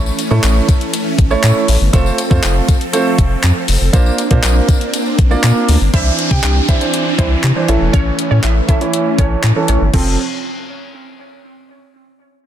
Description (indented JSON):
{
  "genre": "dance-pop",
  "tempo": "120 BPM",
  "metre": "4/4",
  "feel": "straight",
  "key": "F major",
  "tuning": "A4 = 444 Hz",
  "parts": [
    { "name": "warm baby grand piano", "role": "accompaniment", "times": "0.0-10.2 s", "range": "E3 to D5", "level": "-19 LUFS", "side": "right 4 dB", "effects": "sidechain pumping, low-pass filter" },
    { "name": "supersaw chords", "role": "sustained chords", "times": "0.0-10.2 s", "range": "E3 to A4", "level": "-21 LUFS", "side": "equal", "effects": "phaser, sidechain pumping, low-pass filter" },
    { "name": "saturated sub bass", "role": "bass", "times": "0.0-10.2 s", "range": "E1 to C3", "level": "-14 LUFS", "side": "equal", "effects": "sidechain pumping" },
    { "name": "tambourine", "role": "percussion", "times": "0.1-5.9 s", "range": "none", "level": "-29 LUFS", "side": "left 15 dB", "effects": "none" },
    { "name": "clean 12-bit digital drum machine", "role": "drums", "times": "0.2-10.1 s", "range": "crash cymbal, handclaps, hi-hat, kick drum", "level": "-15 LUFS", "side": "left 1 dB", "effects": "none" },
    { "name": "glassy wavetable pluck", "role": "melody", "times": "5.9-10.2 s", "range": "C4 to G5", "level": "-22 LUFS", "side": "right 2 dB", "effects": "chorus, low-pass filter, tape echo" },
    { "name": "downlifter", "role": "sound effects", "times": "5.9-9.9 s", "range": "none", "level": "-24 LUFS", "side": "equal", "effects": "none" }
  ],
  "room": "light reverb, digital ambience",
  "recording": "dense, heavily limited modern master",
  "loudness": "-11 LUFS",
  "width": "side -10 dB against mid",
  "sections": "0.0-5.9 A section; 5.9-9.9 B section; 9.9-11.9 C section",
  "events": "filter sweep 5.9-9.9",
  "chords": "0.0 A; 1.9 F; 3.9 Bbadd9; 5.9 Cadd9; 7.7 A; 9.9 F"
}